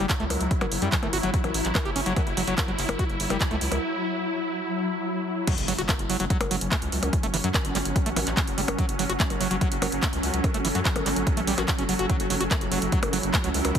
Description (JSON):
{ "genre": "psychedelic trance", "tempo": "145 BPM", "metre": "4/4", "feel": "straight", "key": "F# phrygian", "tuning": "A4 = 440 Hz", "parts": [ { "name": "swarming drone", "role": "sustained chords", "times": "0.0-13.8 s", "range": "F#3 to E4", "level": "-29 LUFS", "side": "left 1 dB", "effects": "built-in reverb, sidechain pumping" }, { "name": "screaming distorted acid line", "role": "riff", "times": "0.0-13.5 s", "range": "E3 to G4", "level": "-30 LUFS", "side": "moving between left 4 dB and right 4 dB", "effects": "distortion, chorus, auto-pan, sidechain pumping, ping-pong delay" }, { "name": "round analog bass", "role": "bass", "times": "0.0-13.7 s", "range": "F#1 to F#2", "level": "-30 LUFS", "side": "equal", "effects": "none" }, { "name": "electronic kick drum", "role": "drums", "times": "0.1-13.8 s", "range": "none", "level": "-26 LUFS", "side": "equal", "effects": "none" }, { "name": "techno drum kit", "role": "drums", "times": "0.1-13.8 s", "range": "crash cymbal, handclaps, hi-hat, percussion blips", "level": "-28 LUFS", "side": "equal", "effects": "none" }, { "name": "impact", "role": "sound effects", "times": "5.5-7.1 s", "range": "none", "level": "-38 LUFS", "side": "equal", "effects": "none" }, { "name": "granular cloud pad", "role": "texture", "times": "6.2-13.8 s", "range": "C#4 to F#5", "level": "-33 LUFS", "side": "right 2 dB", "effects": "built-in reverb, sidechain pumping" } ], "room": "light reverb, digital ambience", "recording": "heavily compressed radio sound", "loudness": "-23 LUFS", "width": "side -8 dB against mid", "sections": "0.0-5.5 A section; 5.5-13.8 B section", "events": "break 3.8-5.5; drop 5.5-13.8; impact 5.5-7.1", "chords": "0.0 F#5", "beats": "0.10 | 0.51 0.92 1.34 1.75 | 2.16 2.58 2.99 3.41 | 3.82 4.23 4.65 5.06 | 5.47 5.89 6.30 6.72 | 7.13 7.54 7.96 8.37 | 8.79 9.20 9.61 10.03 | 10.44 10.85 11.27 11.68 | 12.10 12.51 12.92 13.34 | 13.75" }